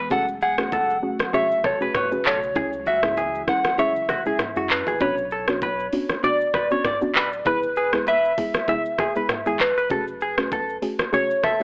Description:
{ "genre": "afrobeats", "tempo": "98 BPM", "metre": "4/4", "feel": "swing 55% on 16ths", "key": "B dorian", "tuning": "A4 = 440 Hz", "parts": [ { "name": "glassy FM pad", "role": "sustained chords", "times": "0.0-5.0 s", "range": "C#3 to F#4", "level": "-41 LUFS", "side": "equal", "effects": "ensemble chorus, built-in reverb, phaser" }, { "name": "direct-recorded clean electric guitar", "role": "riff", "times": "0.0-11.6 s", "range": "F#4 to E5", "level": "-28 LUFS", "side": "equal", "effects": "lush chorus" }, { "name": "warm sub bass", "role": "bass", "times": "0.0-10.8 s", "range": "D1 to F#2", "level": "-45 LUFS", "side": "equal", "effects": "none" }, { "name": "soft struck synth lead", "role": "melody", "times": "0.1-11.6 s", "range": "B4 to F#5", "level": "-26 LUFS", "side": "equal", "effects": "chorus" }, { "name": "soft round pluck", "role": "accompaniment", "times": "0.1-11.6 s", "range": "G#3 to G#4", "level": "-30 LUFS", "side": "equal", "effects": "chorus" }, { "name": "afro-pop drum kit", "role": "drums", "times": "0.1-11.6 s", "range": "handclaps, hi-hat, kick drum, rim click, shaker, toms", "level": "-28 LUFS", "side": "equal", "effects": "none" }, { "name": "congas and bongos", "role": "percussion", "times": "0.1-11.6 s", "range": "none", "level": "-38 LUFS", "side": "equal", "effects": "none" } ], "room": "little or no reverb", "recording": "dry, gritty hardware recording, cassette tape, AM radio sound", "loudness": "-22 LUFS", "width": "mono", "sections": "0.0-5.0 A section; 5.0-11.6 B section", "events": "kick muted 3.8-5.0", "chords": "0.1 F#madd9; 2.6 C#m; 5.0 Bmadd9; 7.5 E; 9.9 F#madd9" }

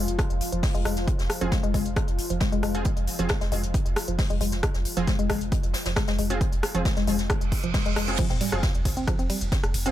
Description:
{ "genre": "driving peak-time techno", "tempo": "135 BPM", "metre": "4/4", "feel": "straight", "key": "F minor", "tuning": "A4 = 441 Hz", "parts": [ { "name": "woody wave-folded pluck", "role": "riff", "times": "0.0-9.9 s", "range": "F3 to C4", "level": "-30 LUFS", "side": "left 3 dB", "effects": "chorus, sidechain pumping, digital delay" }, { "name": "warm sub bass", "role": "bass", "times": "0.0-9.9 s", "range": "F1", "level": "-29 LUFS", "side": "equal", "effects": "tube saturation, sidechain pumping, low-pass filter" }, { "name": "deep dark ambient pad", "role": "drone", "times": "0.0-8.2 s", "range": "F3 to F4", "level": "-38 LUFS", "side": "left 2 dB", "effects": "chorus, built-in reverb, sidechain pumping" }, { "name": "jazz brush drum kit", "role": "drums", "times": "0.1-9.9 s", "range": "hi-hat, snare drum", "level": "-36 LUFS", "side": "left 2 dB", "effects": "sidechain pumping on hats, high-pass filter on hats, high-pass filter on snare, high-pass filter on room" }, { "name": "techno drum kit", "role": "drums", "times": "0.1-9.9 s", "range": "crash cymbal, hi-hat, ride cymbal, rim click", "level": "-32 LUFS", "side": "equal", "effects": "none" }, { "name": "electronic kick drum", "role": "drums", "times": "0.2-9.6 s", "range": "none", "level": "-26 LUFS", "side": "equal", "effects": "none" }, { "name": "rave stab", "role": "stabs", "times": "1.4-9.9 s", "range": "C4 to Ab4", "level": "-34 LUFS", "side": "right 3 dB", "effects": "chorus, built-in reverb, sidechain pumping, digital delay" }, { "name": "reverse cymbal and sub drop", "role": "sound effects", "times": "7.5-9.9 s", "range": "none", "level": "-34 LUFS", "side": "right 2 dB", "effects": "none" } ], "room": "digital ambience", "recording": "none", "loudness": "-23 LUFS", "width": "side -12 dB against mid", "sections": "0.0-8.2 A section; 8.2-9.9 B section", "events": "reverse cymbal 7.5-8.2; drop 8.2-9.9; impact 8.2-9.9", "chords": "0.0 Fm" }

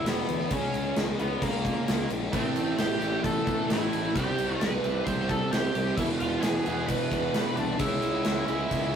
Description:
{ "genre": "quiet-loud alternative rock", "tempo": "132 BPM", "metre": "4/4", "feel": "straight", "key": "unclear", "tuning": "A4 = 439 Hz", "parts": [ { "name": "octave-fuzz lead guitar", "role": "melody", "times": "0.0-9.0 s", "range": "Bb3 to C6", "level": "-30 LUFS", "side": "equal", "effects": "distortion" }, { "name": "distorted electric guitar", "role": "riff", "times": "0.0-9.0 s", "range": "E2 to C#4", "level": "-36 LUFS", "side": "equal", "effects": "distortion" }, { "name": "thick fuzz guitar", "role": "riff", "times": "0.0-9.0 s", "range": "E2 to C#4", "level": "-37 LUFS", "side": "left 7 dB", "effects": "none" }, { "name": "fuzz fingered electric bass", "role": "bass", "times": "0.0-9.0 s", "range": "E1 to D2", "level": "-35 LUFS", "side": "left 1 dB", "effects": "overdrive" }, { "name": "big rock drum kit", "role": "drums", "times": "0.1-8.8 s", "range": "crash cymbal, kick drum, snare drum", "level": "-30 LUFS", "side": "equal", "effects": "none" }, { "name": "cranked stack guitar", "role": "riff", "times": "2.3-9.0 s", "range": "E2 to C#4", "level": "-32 LUFS", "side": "right 5 dB", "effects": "overdrive" } ], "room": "light reverb", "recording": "rough rehearsal-room recording", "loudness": "-25 LUFS", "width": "side -8 dB against mid", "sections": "0.0-9.0 A section", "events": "none", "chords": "0.0 E5; 0.5 C#5; 2.3 Am; 4.2 C5; 6.0 E; 7.8 C#m" }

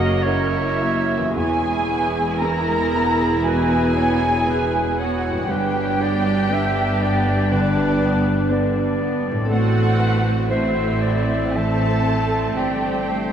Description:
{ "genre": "cinematic, emotional film score for orchestra", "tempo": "51-61 BPM", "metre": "4/4", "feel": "rubato", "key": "unclear", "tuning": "A4 = 439 Hz", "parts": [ { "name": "muted symphonic violin section", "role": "melody", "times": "0.0-13.3 s", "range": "C#5 to A#5", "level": "-26 LUFS", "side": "right 2 dB", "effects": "none" }, { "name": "clear oboe", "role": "second line", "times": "0.0-1.3 s", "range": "C#5 to D#5", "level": "-28 LUFS", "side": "right 3 dB", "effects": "none" }, { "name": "muted symphonic violin section", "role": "second line", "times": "0.0-13.3 s", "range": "D4 to F#5", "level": "-26 LUFS", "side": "equal", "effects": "none" }, { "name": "dark grand piano", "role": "accompaniment", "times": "0.0-13.3 s", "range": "E2 to C5", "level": "-25 LUFS", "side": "right 2 dB", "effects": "none" }, { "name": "muted symphonic viola section", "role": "accompaniment", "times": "0.0-13.3 s", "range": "D3 to A#4", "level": "-27 LUFS", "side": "right 2 dB", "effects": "none" }, { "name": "dark French horn section", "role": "sustained chords", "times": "0.0-13.3 s", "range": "A3 to F#4", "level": "-27 LUFS", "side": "left 1 dB", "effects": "none" }, { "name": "concert harp", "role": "arpeggios", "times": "0.0-13.3 s", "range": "E2 to B4", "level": "-31 LUFS", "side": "left 1 dB", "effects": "none" }, { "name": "muted symphonic cello section", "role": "bass", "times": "0.0-13.3 s", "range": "E2 to A2", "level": "-25 LUFS", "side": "right 1 dB", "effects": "none" }, { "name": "muted symphonic double bass section", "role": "bass", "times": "0.0-13.3 s", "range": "E1 to A1", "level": "-28 LUFS", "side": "equal", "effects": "none" }, { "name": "warm clarinet", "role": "second line", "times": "3.5-13.3 s", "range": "A4 to E5", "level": "-27 LUFS", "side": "left 2 dB", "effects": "none" } ], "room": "wet cathedral reverb, RT60 5.5 s", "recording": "in a vast, echoing space", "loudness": "-17 LUFS", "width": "side -8 dB against mid", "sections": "0.0-1.4 A section; 1.4-13.3 A section", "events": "none", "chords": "0.0 F#; 1.4 E; 5.5 G; 9.5 Am" }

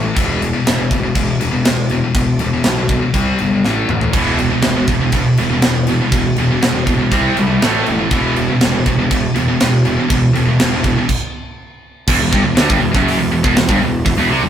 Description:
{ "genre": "heavy metal", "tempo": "121 BPM", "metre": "4/4", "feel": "straight", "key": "E minor", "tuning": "A4 = 441 Hz", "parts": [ { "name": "scooped high-gain guitar", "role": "riff", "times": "0.0-14.5 s", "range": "E2 to C4", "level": "-17 LUFS", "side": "left 4 dB", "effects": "distortion" }, { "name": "fuzz picked electric bass", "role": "bass", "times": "0.0-14.5 s", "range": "E1 to D2", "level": "-20 LUFS", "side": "equal", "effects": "overdrive" }, { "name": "tight metal drum kit", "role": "drums", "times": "0.2-14.2 s", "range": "crash cymbal, hi-hat, kick drum, snare drum, toms", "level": "-18 LUFS", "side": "right 1 dB", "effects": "none" }, { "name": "scooped high-gain guitar", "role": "riff", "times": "4.1-14.5 s", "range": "E2 to C4", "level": "-18 LUFS", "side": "right 6 dB", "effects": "distortion" } ], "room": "light reverb", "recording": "rough rehearsal-room recording, warm saturation", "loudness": "-12 LUFS", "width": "side -9 dB against mid", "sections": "0.0-12.1 A section; 12.1-14.5 B section", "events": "drum fill 3.6-4.1; stop 11.1-12.1", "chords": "0.2 E5; 3.1 C5; 3.6 A5; 4.1 E5; 7.1 C5; 7.6 A5; 8.1 E5; 11.1 N.C.; 12.1 Em" }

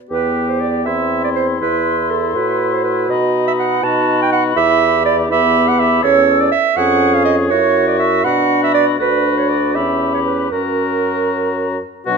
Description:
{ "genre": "quick classical-period movement for wind quintet", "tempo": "81 BPM (dotted quarters)", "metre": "6/8", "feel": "straight", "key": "E minor", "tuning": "A4 = 440 Hz", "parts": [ { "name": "hollow concert flute", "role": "melody", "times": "0.1-12.2 s", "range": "F#5 to E6", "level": "-22 LUFS", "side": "left 14 dB", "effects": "none" }, { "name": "warm oboe", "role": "second line", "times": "0.1-12.2 s", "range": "D#4 to A4", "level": "-22 LUFS", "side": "left 6 dB", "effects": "none" }, { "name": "clear clarinet", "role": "accompaniment", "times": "0.1-12.2 s", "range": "D4 to A5", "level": "-16 LUFS", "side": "right 9 dB", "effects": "none" }, { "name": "warm French horn", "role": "accompaniment", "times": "0.1-12.2 s", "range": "F#3 to F#4", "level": "-21 LUFS", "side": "left 2 dB", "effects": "none" }, { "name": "mellow bassoon", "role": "bass", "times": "0.1-12.2 s", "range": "D2 to B2", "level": "-21 LUFS", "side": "right 2 dB", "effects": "none" } ], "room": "moderate recital hall reverb, RT60 1.3 s", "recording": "none", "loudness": "-13 LUFS", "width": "side -5 dB against mid", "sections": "0.1-12.1 A section", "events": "none", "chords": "0.1 Em; 0.9 C/E; 1.6 F#dim/E; 3.1 B; 4.6 Em; 6.0 Aadd11/E; 6.8 C#/E#; 7.5 F#5; 8.3 Bm; 9.0 Bm/D; 9.8 C#m7b5/E; 10.5 F#" }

